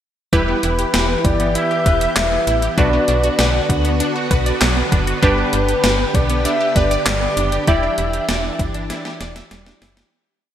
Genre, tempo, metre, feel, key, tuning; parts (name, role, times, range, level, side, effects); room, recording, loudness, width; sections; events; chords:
synth-pop; 98 BPM; 4/4; straight; E minor; A4 = 441 Hz
funky polysynth comp; accompaniment; 0.3-10.1 s; D4 to D5; -23 LUFS; right 1 dB; chorus
string machine, violins; sustained chords; 0.3-10.1 s; D3 to G4; -24 LUFS; equal; ensemble chorus
wide unison pluck; arpeggios; 0.3-10.1 s; F#3 to E5; -26 LUFS; equal; phaser, digital delay
slap-like FM bass; bass; 0.3-10.0 s; E1 to D2; -21 LUFS; equal
gated 80s digital drum machine; drums; 0.3-10.1 s; handclaps, hi-hat, kick drum, snare drum; -19 LUFS; equal; gated reverb, gated reverb snare
mellow horn-like synth lead; melody; 0.6-8.9 s; B4 to E5; -20 LUFS; equal; chorus, digital delay
moderate lush hall reverb, RT60 2.6 s; bright 1980s-style digital production; -15 LUFS; side -10 dB against mid
0.3-10.1 chorus
fade-out 7.7-10.1; drum fill 8.9-10.1
0.3 Em; 2.8 Bm; 5.2 G; 7.7 Em7